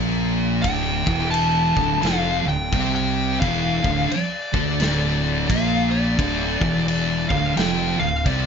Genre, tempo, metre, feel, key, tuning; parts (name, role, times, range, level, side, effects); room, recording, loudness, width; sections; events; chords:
stoner and doom metal; 87 BPM; 4/4; swing 62% on 8ths; D minor; A4 = 438 Hz
thick fuzz guitar; riff; 0.0-8.5 s; D2 to D4; -24 LUFS; left 8 dB; distortion
thick fuzz guitar; riff; 0.0-8.5 s; D2 to D4; -24 LUFS; right 9 dB; distortion
fuzz fingered electric bass; bass; 0.0-8.5 s; D1 to D2; -26 LUFS; equal; overdrive
fuzz lead guitar; melody; 0.6-8.5 s; D5 to A5; -25 LUFS; left 1 dB; distortion, plate reverb, ping-pong delay
big rock drum kit; drums; 0.6-8.5 s; crash cymbal, kick drum, snare drum; -27 LUFS; left 1 dB
moderate studio reverb, RT60 0.6 s; nothing above 7.5 kHz; -18 LUFS; side -6 dB against mid
0.0-8.5 A section
0.0 Dm